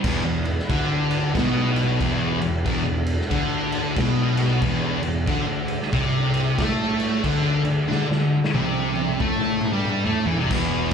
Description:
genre	stoner and doom metal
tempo	92 BPM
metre	4/4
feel	swing 62% on 8ths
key	unclear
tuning	A4 = 440 Hz
part	tonewheel organ	sustained chords	0.0-10.9 s	E3 to F#5	-36 LUFS	right 2 dB	none
part	sludgy distorted guitar	riff	0.0-10.9 s	E2 to A3	-27 LUFS	right 1 dB	overdrive, slapback echo
part	thick fuzz guitar	riff	0.0-10.9 s	E2 to A3	-24 LUFS	left 6 dB	distortion
part	thick fuzz guitar	riff	0.0-10.9 s	E2 to A3	-27 LUFS	right 8 dB	distortion
part	fuzz picked electric bass	bass	0.0-10.9 s	E1 to A2	-30 LUFS	right 1 dB	overdrive
part	raw garage drum kit	drums	0.0-10.9 s	crash cymbal, kick drum, ride cymbal, snare drum, toms	-26 LUFS	right 1 dB	none
room	small room ambience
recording	live gig heard through the venue's PA, club reverb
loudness	-20 LUFS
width	side -7 dB against mid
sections	0.0-10.5 A section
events	drum fill 7.9-10.5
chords	0.0 E5; 5.3 D5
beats	| 0.04 0.70 1.35 2.01 | 2.66 3.32 3.97 4.62 | 5.28 5.93 6.58 7.24 | 7.89 8.54 9.20 9.85 | 10.51

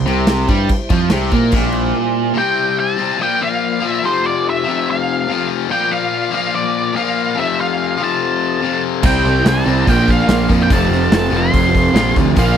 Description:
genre	classic rock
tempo	144 BPM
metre	4/4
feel	straight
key	unclear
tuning	A4 = 440 Hz
part	tonewheel organ	sustained chords	0.0-12.6 s	G3 to F5	-28 LUFS	equal	slow rotary speaker
part	crunchy overdriven guitar	riff	0.0-12.6 s	F2 to C4	-19 LUFS	left 12 dB	none
part	distorted electric guitar	riff	0.0-2.4, 9.0-12.6 s	F2 to C4	-19 LUFS	right 12 dB	distortion
part	fuzz picked electric bass	bass	0.0-1.9, 9.0-12.5 s	F1 to Bb2	-17 LUFS	equal	overdrive
part	big rock drum kit	drums	0.1-1.8, 9.0-12.5 s	crash cymbal, hi-hat, kick drum, snare drum	-17 LUFS	equal	none
part	octave-fuzz lead guitar	melody	2.4-12.6 s	C5 to C6	-19 LUFS	equal	distortion, slapback echo
part	picked steel-string acoustic guitar	accompaniment	9.1-12.6 s	Bb2 to C5	-23 LUFS	right 7 dB	none
room	small room ambience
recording	dry, close 1970s-style studio recording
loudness	-13 LUFS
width	side -8 dB against mid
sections	0.0-2.4 A section; 2.4-12.6 B section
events	none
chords	0.0 C; 3.2 Bb; 4.0 F; 5.7 Bb; 7.4 F; 9.0 C; 9.9 Bb; 10.7 F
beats	0.28 | 0.69 1.11 1.53 1.95 | 2.36 2.78 3.20 3.62 | 4.03 4.45 4.87 5.28 | 5.70 6.12 6.54 6.95 | 7.37 7.79 8.21 8.62 | 9.04 9.46 9.88 10.29 | 10.71 11.12 11.54 11.96 | 12.37

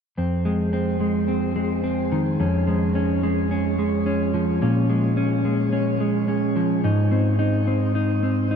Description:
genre	dream pop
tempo	108 BPM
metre	4/4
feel	straight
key	F minor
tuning	A4 = 439 Hz
part	mellow electric guitar	arpeggios	0.2-8.6 s	F2 to Eb4	-19 LUFS	equal	wide subtle chorus, ping-pong delay
room	moderate shimmer reverb, RT60 4.8 s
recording	dark, warm production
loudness	-19 LUFS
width	side -7 dB against mid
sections	0.2-8.6 A section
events	none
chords	0.2 Fm7; 2.4 Db/F; 4.6 Bbm7; 6.8 Ab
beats	| 0.17 0.73 1.28 1.84 | 2.40 2.95 3.51 4.06 | 4.62 5.17 5.73 6.29 | 6.84 7.40 7.95 8.51

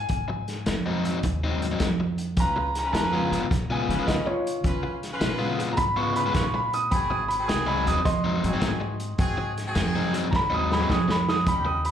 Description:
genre	electric blues shuffle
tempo	106 BPM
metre	4/4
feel	swing 67% on 8ths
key	Ab mixolydian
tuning	A4 = 440 Hz
part	warm upright piano	second line	0.0-11.9 s	F4 to Eb6	-28 LUFS	right 1 dB	slapback echo
part	upright bass	bass	0.0-11.9 s	Ab1 to Db3	-29 LUFS	right 2 dB	none
part	vintage drum kit	drums	0.1-11.9 s	hi-hat, kick drum, snare drum	-28 LUFS	equal	none
part	overdriven electric guitar	riff	0.3-11.7 s	Ab2 to F4	-29 LUFS	left 5 dB	slapback echo
part	clear horn section	stabs	2.4-11.8 s	C4 to Cb5	-32 LUFS	equal	slapback echo
room	moderate plate reverb, RT60 1.8 s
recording	live gig heard through the venue's PA, club reverb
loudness	-22 LUFS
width	side -9 dB against mid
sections	0.0-11.9 A section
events	upright piano solo 0.0-11.9; drum fill 10.3-11.5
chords	0.0 Ab7; 2.4 Db7; 6.9 Ab7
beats	| 0.10 0.67 1.24 1.81 | 2.38 2.94 3.51 4.08 | 4.65 5.22 5.79 6.36 | 6.92 7.49 8.06 8.63 | 9.20 9.77 10.34 10.90 | 11.47

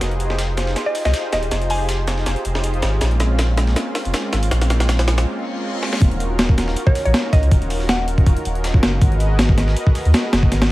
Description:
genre	drum and bass, jungle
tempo	160 BPM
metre	4/4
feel	swing 54% on 16ths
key	Eb minor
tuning	A4 = 440 Hz
part	lush unison pad	sustained chords	0.0-10.7 s	Ab3 to Eb5	-25 LUFS	equal	chorus
part	soft dub sub bass	bass	0.0-10.7 s	Eb1 to Eb2	-19 LUFS	equal	none
part	breakbeat sampler-style drum kit	drums	0.0-10.7 s	hi-hat, kick drum, snare drum	-18 LUFS	equal	high-pass filter on snare, studio ambience, high-pass filter on hats, high-pass filter on kick
part	breakbeat sampler-style drum kit	drums	0.0-10.6 s	hi-hat, snare drum	-33 LUFS	left 1 dB	high-pass filter on hats, studio ambience, high-pass filter on snare
part	mallet-like synth pluck	melody	0.9-2.0, 6.9-8.2 s	Db5 to Ab5	-25 LUFS	equal	chorus, dub echo
part	reverse cymbal	sound effects	5.4-6.0 s	none	-32 LUFS	left 7 dB	none
room	little or no reverb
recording	vinyl crackle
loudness	-16 LUFS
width	side -17 dB against mid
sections	0.0-6.0 A section; 6.0-10.7 B section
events	build-up 0.0-6.0; filter sweep on synth pluck 0.0-6.0; drum fill 0.0-5.3, 5.8; break 5.3-6.0; reverse cymbal 5.4-6.0; drop 6.0-10.7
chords	0.0 Fm9; 3.0 Bbm9; 6.0 Ebm9; 9.0 Abm9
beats	| 0.01 0.39 0.76 1.14 | 1.51 1.89 2.26 2.64 | 3.01 3.39 3.76 4.14 | 4.51 4.89 5.26 5.64 | 6.01 6.39 6.76 7.14 | 7.51 7.89 8.26 8.64 | 9.01 9.39 9.76 10.14 | 10.51

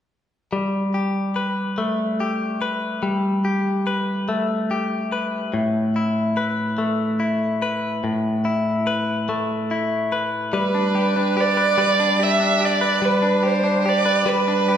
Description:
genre	pop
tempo	48 BPM (dotted quarters)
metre	6/8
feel	straight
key	G major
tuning	A4 = 440 Hz
part	direct-recorded clean electric guitar	accompaniment	0.5-14.8 s	A2 to B4	-20 LUFS	left 1 dB	none
part	warm violin	melody	10.6-14.8 s	B4 to E5	-19 LUFS	right 4 dB	none
room	wet recital hall reverb, RT60 1.6 s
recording	recorded in a church or concert hall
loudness	-19 LUFS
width	side -9 dB against mid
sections	0.5-10.5 A section; 10.5-14.8 B section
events	none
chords	0.5 Gadd9; 5.5 Asus2; 10.5 G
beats	| 0.53 1.78 | 3.04 4.29 | 5.54 6.79 | 8.04 9.29 | 10.54 11.78 | 13.03 14.28

